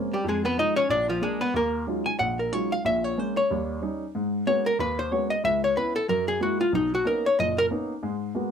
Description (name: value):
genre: jazz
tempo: 185 BPM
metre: 4/4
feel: swing 62% on 8ths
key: Eb minor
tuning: A4 = 440 Hz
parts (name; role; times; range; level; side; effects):
- warm baby grand piano; accompaniment; 0.0-8.5 s; F#1 to Gb4; -28 LUFS; right 1 dB; none
- archtop guitar, miked and amplified; melody; 0.1-7.7 s; F3 to Ab5; -24 LUFS; left 1 dB; none
room: light reverb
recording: close, detailed microphones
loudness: -23 LUFS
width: side -7 dB against mid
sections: 0.0-1.5 A section; 1.5-8.5 A section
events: hollow-body jazz guitar solo 0.0-8.5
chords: 0.2 Fm7b5; 0.9 Bb7; 1.5 Ebm11; 2.8 Bbm9b5; 3.5 Eb7; 4.1 Abm11; 5.4 Dbm7; 6.1 Gb9; 6.7 Bmaj9